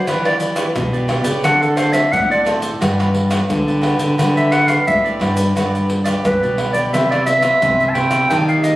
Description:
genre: samba and choro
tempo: 87 BPM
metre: 4/4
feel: straight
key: G major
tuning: A4 = 441 Hz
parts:
  - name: warm clarinet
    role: melody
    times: 0.0-8.8 s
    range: A4 to A5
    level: -16 LUFS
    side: equal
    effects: none
  - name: cavaquinho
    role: accompaniment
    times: 0.0-8.7 s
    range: D4 to E5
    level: -24 LUFS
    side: right 3 dB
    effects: none
  - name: nylon-string guitar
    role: accompaniment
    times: 0.0-8.8 s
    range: G2 to B4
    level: -26 LUFS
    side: left 2 dB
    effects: none
  - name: nylon-string guitar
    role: bass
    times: 0.1-8.8 s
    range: G2 to E3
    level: -18 LUFS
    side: equal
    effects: none
  - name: egg shaker, surdo, pandeiro and tamborim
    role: percussion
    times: 0.1-8.8 s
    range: none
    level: -23 LUFS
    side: left 1 dB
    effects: none
room: moderate large studio reverb, RT60 1.2 s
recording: recorded on a phone in the room, studio reverb, compression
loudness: -14 LUFS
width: side -16 dB against mid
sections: 0.0-5.6 A section; 5.6-8.8 B section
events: clarinet solo 0.0-5.6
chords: 0.1 Em7; 1.4 D7; 2.8 Gmaj7; 6.9 Cmaj7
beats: | 0.07 0.76 1.44 2.13 | 2.81 3.50 4.19 4.87 | 5.56 6.25 6.93 7.62 | 8.31

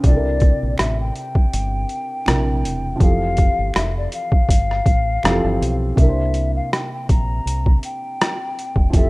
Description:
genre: lo-fi hip hop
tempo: 81 BPM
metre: 4/4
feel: swing 55% on 16ths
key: unclear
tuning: A4 = 440 Hz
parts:
  - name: felt-muted upright piano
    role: accompaniment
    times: 0.0-9.1 s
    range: C3 to C5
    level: -24 LUFS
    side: right 1 dB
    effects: cassette tape, low-pass filter
  - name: deep dub fingered electric bass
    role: bass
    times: 0.0-9.1 s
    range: E1 to C2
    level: -21 LUFS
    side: equal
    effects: none
  - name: boom bap sampler-style drum kit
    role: drums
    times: 0.0-9.1 s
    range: hi-hat, kick drum, rim click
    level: -17 LUFS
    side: equal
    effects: overdrive
  - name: mellow hollow jazz flute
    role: melody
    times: 0.1-9.1 s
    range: D5 to Bb5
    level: -25 LUFS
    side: left 3 dB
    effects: low-pass filter
  - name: finger snaps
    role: percussion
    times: 0.8-5.4 s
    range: none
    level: -38 LUFS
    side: right 2 dB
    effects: none
room: studio reverb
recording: rough home demo mix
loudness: -16 LUFS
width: side -22 dB against mid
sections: 0.0-6.0 A section; 6.0-9.1 B section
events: none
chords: 0.0 C9; 3.0 Fmaj9; 5.2 Fmaj7; 6.0 C9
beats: | 0.04 0.79 1.53 2.27 | 3.01 3.75 4.49 5.23 | 5.97 6.71 7.45 8.19 | 8.93

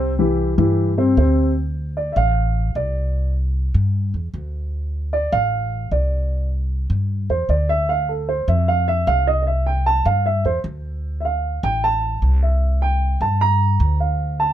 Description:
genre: latin, Cuban son and guajira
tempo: 152 BPM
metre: 4/4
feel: straight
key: unclear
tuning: A4 = 443 Hz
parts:
  - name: dark baby grand piano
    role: arpeggios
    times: 0.0-14.5 s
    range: C3 to Bb5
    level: -20 LUFS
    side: right 1 dB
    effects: none
  - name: upright bass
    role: bass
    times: 0.0-14.5 s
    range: A1 to G2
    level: -20 LUFS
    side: equal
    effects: none
room: little or no reverb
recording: close, detailed microphones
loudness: -17 LUFS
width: side -11 dB against mid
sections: 0.0-1.6 A section; 1.6-14.5 B section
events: grand piano solo 1.6-14.5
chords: 0.0 C; 1.6 Dm7; 3.2 C; 4.7 Dm7; 6.3 C; 7.9 Dm7; 9.5 C; 11.1 Dm7; 12.6 C5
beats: 0.39 0.78 1.18 | 1.57 1.97 2.37 2.76 | 3.16 3.55 3.95 4.34 | 4.74 5.13 5.53 5.92 | 6.32 6.71 7.11 7.50 | 7.89 8.29 8.68 9.08 | 9.47 9.87 10.26 10.66 | 11.05 11.45 11.84 12.23 | 12.63 13.02 13.42 13.81 | 14.20

